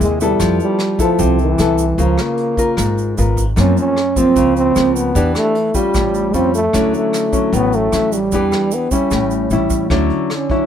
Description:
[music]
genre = bossa nova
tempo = 151 BPM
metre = 4/4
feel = straight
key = unclear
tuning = A4 = 440 Hz
[part]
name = breathy trombone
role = melody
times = 0.0-10.7 s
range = E3 to C#4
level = -17 LUFS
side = right 2 dB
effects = none
[part]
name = nylon-string guitar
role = accompaniment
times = 0.0-10.7 s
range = F#2 to A#4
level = -18 LUFS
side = left 3 dB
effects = none
[part]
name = upright bass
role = bass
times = 0.0-10.1 s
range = G#1 to F#2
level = -19 LUFS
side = equal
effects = none
[part]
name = vintage brush drum kit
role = drums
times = 0.0-10.6 s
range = hi-hat, kick drum, rim click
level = -24 LUFS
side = equal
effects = none
[part]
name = tube shaker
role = percussion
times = 0.0-9.9 s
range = none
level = -30 LUFS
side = right 9 dB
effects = none
[sound]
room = little or no reverb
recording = minimal, uncompressed stereo recording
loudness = -13 LUFS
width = side -9 dB against mid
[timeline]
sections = 0.0-9.9 A section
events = none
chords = 0.4 Fmaj9#11; 2.0 C#6; 3.6 F#maj7#11; 5.2 Em7; 5.9 Aaug7; 6.7 Dmaj9; 8.3 Em7; 9.1 A7; 9.9 Dmaj9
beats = 0.00 | 0.40 0.79 1.19 1.59 | 1.98 2.38 2.77 3.17 | 3.57 3.96 4.36 4.75 | 5.15 5.55 5.94 6.34 | 6.74 7.13 7.53 7.92 | 8.32 8.72 9.11 9.51 | 9.91 10.30

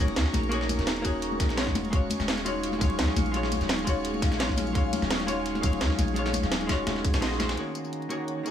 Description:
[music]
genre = liquid drum and bass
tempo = 170 BPM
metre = 4/4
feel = swing 53% on 16ths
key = Eb minor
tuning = A4 = 441 Hz
[part]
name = vintage hollow-body jazz guitar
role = accompaniment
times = 0.0-8.5 s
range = Eb3 to F5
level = -31 LUFS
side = left 1 dB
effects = tape echo
[part]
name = airy breathy pad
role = sustained chords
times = 0.0-8.5 s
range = Eb4 to Db6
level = -36 LUFS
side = right 2 dB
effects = chorus, phaser
[part]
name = vibraphone with medium hard mallets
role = arpeggios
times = 0.0-8.5 s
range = Db4 to Ab4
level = -34 LUFS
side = left 2 dB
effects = low-pass filter, tape echo
[part]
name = long sustained 808-style bass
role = bass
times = 0.0-7.6 s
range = Eb1 to Eb2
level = -31 LUFS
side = equal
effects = none
[part]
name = congas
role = percussion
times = 0.1-7.5 s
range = none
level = -36 LUFS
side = left 3 dB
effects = none
[part]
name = dusty soul sampler-style drum kit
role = drums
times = 0.2-7.6 s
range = hi-hat, snare drum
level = -35 LUFS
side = equal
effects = high-pass filter on snare, high-pass filter on hats, high-pass filter on room
[part]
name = garage drum kit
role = drums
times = 0.2-8.5 s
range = hi-hat, ride cymbal, snare drum, tambourine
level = -33 LUFS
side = right 1 dB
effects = none
[part]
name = electronic kick drum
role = drums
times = 1.0-7.1 s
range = none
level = -26 LUFS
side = equal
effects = none
[sound]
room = light reverb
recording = none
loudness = -24 LUFS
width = side -9 dB against mid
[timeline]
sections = 0.0-7.6 A section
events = drop 0.0-7.6; kick drops out 7.2-7.6; band accent 7.2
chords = 0.0 Ab9sus4/Eb; 1.8 Ebm11; 7.6 Ab9sus4/Eb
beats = 0.16 | 0.52 0.87 1.22 1.57 | 1.93 2.28 2.63 2.99 | 3.34 3.69 4.05 4.40 | 4.75 5.11 5.46 5.81 | 6.16 6.52 6.87 7.22 | 7.58 7.93 8.28

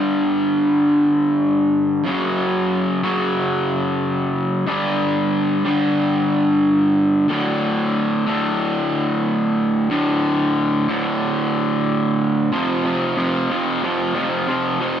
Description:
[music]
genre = rock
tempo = 92 BPM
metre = 4/4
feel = straight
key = D major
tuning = A4 = 440 Hz
[part]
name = raw garage guitar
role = solo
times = 0.0-15.0 s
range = D2 to G3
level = -17 LUFS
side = equal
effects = overdrive
[sound]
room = moderate lush hall reverb, RT60 1.7 s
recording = none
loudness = -17 LUFS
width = side -9 dB against mid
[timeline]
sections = 0.0-2.1 A section; 2.1-12.5 B section; 12.5-15.0 C section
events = build-up 12.5-15.0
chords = 0.0 G5; 2.1 F#5; 4.7 G5; 7.3 D5; 12.5 F5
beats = 0.10 0.75 1.40 | 2.06 2.71 3.37 4.02 | 4.67 5.33 5.98 6.63 | 7.29 7.94 8.60 9.25 | 9.90 10.56 11.21 11.87 | 12.52 13.18 13.83 14.48

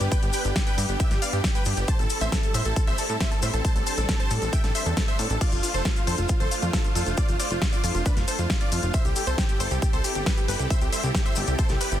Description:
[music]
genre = uplifting trance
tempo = 136 BPM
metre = 4/4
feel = straight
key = C major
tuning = A4 = 440 Hz
[part]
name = big supersaw lead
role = melody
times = 0.0-12.0 s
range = D4 to A5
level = -30 LUFS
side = equal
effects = sidechain pumping, dub echo
[part]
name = wide unison pluck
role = second line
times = 0.0-12.0 s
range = F4 to A5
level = -36 LUFS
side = right 1 dB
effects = none
[part]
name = filtered supersaw swell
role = sustained chords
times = 0.0-12.0 s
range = G3 to C5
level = -33 LUFS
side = equal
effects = phaser, sidechain pumping
[part]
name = plucky analog bass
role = bass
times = 0.0-12.0 s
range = F1 to A2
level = -27 LUFS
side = equal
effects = sidechain pumping
[part]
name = big-room dance drum kit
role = drums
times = 0.0-12.0 s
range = crash cymbal, hi-hat, snare drum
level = -31 LUFS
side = left 1 dB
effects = none
[part]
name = cabasa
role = percussion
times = 0.0-12.0 s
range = none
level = -36 LUFS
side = left 5 dB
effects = none
[part]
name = electronic kick drum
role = drums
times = 0.1-11.7 s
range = none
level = -24 LUFS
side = equal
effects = none
[sound]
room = little or no reverb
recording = dense, heavily limited modern master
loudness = -22 LUFS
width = side -11 dB against mid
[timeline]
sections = 0.0-12.0 A section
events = none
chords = 0.0 G; 1.9 Am7; 5.4 F6; 8.9 C6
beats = | 0.12 0.56 1.00 1.44 | 1.88 2.32 2.76 3.21 | 3.65 4.09 4.53 4.97 | 5.41 5.85 6.29 6.73 | 7.18 7.62 8.06 8.50 | 8.94 9.38 9.82 10.26 | 10.71 11.15 11.59

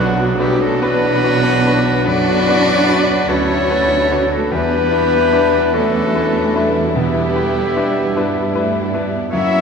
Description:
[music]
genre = classical, romantic movement for piano and orchestra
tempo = 47-51 BPM (dotted quarters)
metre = 12/8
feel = rubato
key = unclear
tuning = A4 = 441 Hz
[part]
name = clear grand piano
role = melody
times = 0.0-9.6 s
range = B1 to B4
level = -20 LUFS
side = left 2 dB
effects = none
[part]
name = rich studio violin section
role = melody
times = 0.0-9.6 s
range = B3 to A#4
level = -26 LUFS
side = left 5 dB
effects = none
[part]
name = clear clarinet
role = second line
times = 0.0-9.6 s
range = C#4 to D4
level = -29 LUFS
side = left 1 dB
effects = none
[part]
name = clear oboe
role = second line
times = 0.0-9.6 s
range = D4 to C#5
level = -26 LUFS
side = right 2 dB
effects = none
[part]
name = mellow hollow large flute ensemble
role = second line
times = 0.0-9.6 s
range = E5 to F#5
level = -28 LUFS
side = left 2 dB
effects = none
[part]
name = warm studio violin section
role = second line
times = 0.0-9.6 s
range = A#3 to G4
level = -29 LUFS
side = left 3 dB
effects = none
[part]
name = mellow bassoon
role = accompaniment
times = 0.0-9.6 s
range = F#3 to B3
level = -27 LUFS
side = right 2 dB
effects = none
[part]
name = warm studio viola section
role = accompaniment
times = 0.0-9.6 s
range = D3 to C#4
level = -25 LUFS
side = right 1 dB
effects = none
[part]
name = bright trombone section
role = sustained chords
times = 0.0-9.6 s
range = B2 to D4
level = -26 LUFS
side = right 4 dB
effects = none
[part]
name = mellow French horn section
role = sustained chords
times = 0.0-9.6 s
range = F#4 to E5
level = -19 LUFS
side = left 4 dB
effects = none
[part]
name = bright trumpet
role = stabs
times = 0.0-9.6 s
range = F#4 to E5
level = -24 LUFS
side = right 3 dB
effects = none
[part]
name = dark studio double bass section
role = bass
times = 0.0-9.6 s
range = B1 to G2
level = -24 LUFS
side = right 6 dB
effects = none
[part]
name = warm studio cello section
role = bass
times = 0.0-9.6 s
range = F#3 to E4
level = -23 LUFS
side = right 3 dB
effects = none
[sound]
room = moderate concert hall reverb, RT60 2.2 s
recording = none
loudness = -13 LUFS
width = side -6 dB against mid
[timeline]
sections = 0.0-9.6 A section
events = none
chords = 0.0 Bm; 4.5 Em7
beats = 0.81 2.06 3.29 | 4.52 5.74 6.95 8.15 | 9.32

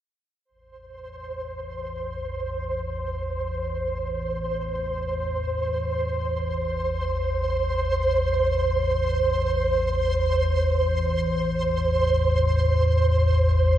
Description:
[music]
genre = dark ambient drone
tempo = free time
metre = none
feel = none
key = unclear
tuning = A4 = 440 Hz
[part]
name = analog drone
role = drone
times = 0.5-13.8 s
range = A1 to E2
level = -25 LUFS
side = left 1 dB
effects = lush chorus
[part]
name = flickering grainy texture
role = texture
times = 0.9-13.8 s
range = C5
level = -25 LUFS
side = right 2 dB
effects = built-in reverb
[sound]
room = wet cathedral reverb, RT60 5.0 s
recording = dark, warm production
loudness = -22 LUFS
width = side -11 dB against mid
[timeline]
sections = 0.5-13.8 A section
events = fade-in on synth drone 0.5-13.8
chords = 0.5 Am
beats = free time

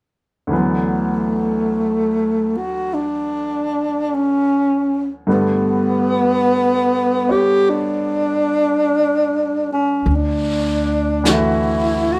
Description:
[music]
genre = jazz ballad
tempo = 50 BPM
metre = 4/4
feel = swing 67% on 8ths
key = D major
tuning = A4 = 443 Hz
[part]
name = clear grand piano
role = accompaniment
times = 0.5-12.2 s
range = D2 to C#5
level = -24 LUFS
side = equal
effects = none
[part]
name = breathy tenor saxophone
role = melody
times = 0.6-12.2 s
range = A3 to G4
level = -19 LUFS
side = equal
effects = plate reverb
[part]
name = upright bass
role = bass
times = 10.1-12.2 s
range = D2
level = -23 LUFS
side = equal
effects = none
[part]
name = vintage brush drum kit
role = drums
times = 10.1-12.2 s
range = brushed snare drum, hi-hat, snare drum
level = -28 LUFS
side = equal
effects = none
[sound]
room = wet small room reverb, RT60 0.5 s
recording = rough home demo mix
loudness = -18 LUFS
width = mono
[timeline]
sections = 0.5-10.1 A section; 10.1-12.2 B section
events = none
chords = 0.5 D6; 5.3 G; 10.1 Dadd9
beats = | 0.51 1.71 2.90 4.09 | 5.27 6.46 7.65 8.85 | 10.06 11.26

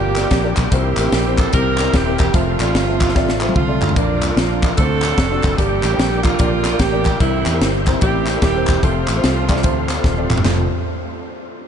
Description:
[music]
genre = uptempo gospel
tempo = 148 BPM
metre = 4/4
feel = swing 64% on 8ths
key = F major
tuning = A4 = 440 Hz
[part]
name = clear saxophone section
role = melody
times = 0.0-10.0 s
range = F3 to Bb4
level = -21 LUFS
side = right 5 dB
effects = diffuse ambient delay
[part]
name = dark upright piano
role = accompaniment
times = 0.0-10.7 s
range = F2 to F5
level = -23 LUFS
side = left 2 dB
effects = lush chorus
[part]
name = percussive tonewheel organ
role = sustained chords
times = 0.0-10.7 s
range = A3 to D6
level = -28 LUFS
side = right 2 dB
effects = fast rotary speaker, chorus vibrato
[part]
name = fingered electric bass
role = bass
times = 0.0-10.7 s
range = Eb1 to E2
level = -21 LUFS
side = equal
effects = none
[part]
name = crisp fusion drum kit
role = drums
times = 0.2-10.6 s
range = crash cymbal, hi-hat, kick drum, snare drum, toms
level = -19 LUFS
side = equal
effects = none
[part]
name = group handclap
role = percussion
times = 0.2-10.7 s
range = none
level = -27 LUFS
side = left 2 dB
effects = none
[sound]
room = moderate huge ambient reverb, RT60 8.7 s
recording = dreamy mix soaked in reverb, nothing above 10.5 kHz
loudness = -14 LUFS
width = side -8 dB against mid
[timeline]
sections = 0.0-4.0 A section; 4.0-10.4 B section; 10.4-11.7 C section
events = drum fill 3.2-4.0, 10.0-10.4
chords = 0.0 Gm; 0.7 C7; 2.3 F; 4.0 Bb; 4.8 D7; 5.6 Gm; 7.2 C7; 8.8 F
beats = 0.32 | 0.72 1.13 1.53 1.94 | 2.34 2.75 3.15 3.56 | 3.96 4.37 4.78 5.18 | 5.59 5.99 6.40 6.80 | 7.21 7.61 8.02 8.42 | 8.83 9.23 9.63 10.04 | 10.44

